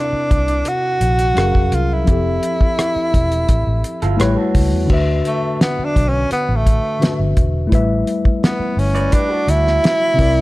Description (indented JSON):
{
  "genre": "lush 1970s-style soul",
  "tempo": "85 BPM",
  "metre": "4/4",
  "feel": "straight",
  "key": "D major",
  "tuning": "A4 = 440 Hz",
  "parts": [
    { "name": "breathy tenor saxophone", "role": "melody", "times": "0.0-10.4 s", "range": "A3 to F#4", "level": "-19 LUFS", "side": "right 1 dB", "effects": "none" },
    { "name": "tine electric piano", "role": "accompaniment", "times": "0.0-10.4 s", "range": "C3 to E#5", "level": "-21 LUFS", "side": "left 2 dB", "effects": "none" },
    { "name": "vintage muted fingered electric bass", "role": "bass", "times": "0.1-10.4 s", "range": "E1 to E2", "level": "-18 LUFS", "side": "equal", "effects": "none" },
    { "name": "cloth-damped thuddy drum kit", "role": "drums", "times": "0.3-10.4 s", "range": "crash cymbal, hi-hat, kick drum, rim click, snare drum", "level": "-17 LUFS", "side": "equal", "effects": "none" },
    { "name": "electric guitar through a small old amp", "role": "riff", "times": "4.0-10.2 s", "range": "F4 to D5", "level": "-26 LUFS", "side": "right 5 dB", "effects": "none" }
  ],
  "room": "small room ambience",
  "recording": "none",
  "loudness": "-14 LUFS",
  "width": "side -19 dB against mid",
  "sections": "0.0-4.9 A section; 4.9-10.4 B section",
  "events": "tenor saxophone solo 4.9-10.4",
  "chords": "0.0 C7; 1.4 F#maj9; 2.1 Fmaj9; 4.2 A9; 4.9 D69; 7.7 A7sus4"
}